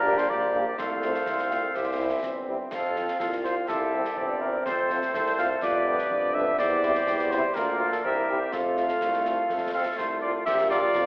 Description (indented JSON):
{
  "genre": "military-style march for wind band",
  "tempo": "124 BPM",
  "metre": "2/4",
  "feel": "straight",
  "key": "F major",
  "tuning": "A4 = 440 Hz",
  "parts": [
    { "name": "mellow cornet", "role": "melody", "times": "0.0-11.1 s", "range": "F4 to F5", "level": "-27 LUFS", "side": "equal", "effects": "none" },
    { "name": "clear woodwind section", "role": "second line", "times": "0.0-11.1 s", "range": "F4 to F5", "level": "-30 LUFS", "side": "equal", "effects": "none" },
    { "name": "warm euphonium", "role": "second line", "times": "0.0-11.1 s", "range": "G3 to G4", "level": "-33 LUFS", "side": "equal", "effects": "none" },
    { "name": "clear trombone section", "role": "sustained chords", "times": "0.0-11.1 s", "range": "E3 to C4", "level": "-35 LUFS", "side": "equal", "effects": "none" },
    { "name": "clear tuba", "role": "bass", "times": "0.0-11.1 s", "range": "G1 to F2", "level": "-32 LUFS", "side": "equal", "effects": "none" },
    { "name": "mellow French horn section", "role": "accompaniment", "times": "0.1-10.8 s", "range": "F3 to G4", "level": "-34 LUFS", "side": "left 1 dB", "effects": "none" },
    { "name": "concert snare drum, concert bass drum and clash cymbals", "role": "drums", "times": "0.2-11.1 s", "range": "none", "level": "-41 LUFS", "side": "equal", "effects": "none" }
  ],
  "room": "wet concert hall reverb, RT60 1.9 s",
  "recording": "recorded in a church or concert hall, telephone sound",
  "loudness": "-23 LUFS",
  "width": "side -23 dB against mid",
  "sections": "0.0-10.5 A section",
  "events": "none",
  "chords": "0.0 Gm/Bb; 0.8 F/C; 1.8 C; 2.7 F; 3.7 C; 4.7 F; 5.6 G7/F; 6.6 C/E; 7.6 Bb/D; 8.0 C7; 8.5 F; 10.5 Bb"
}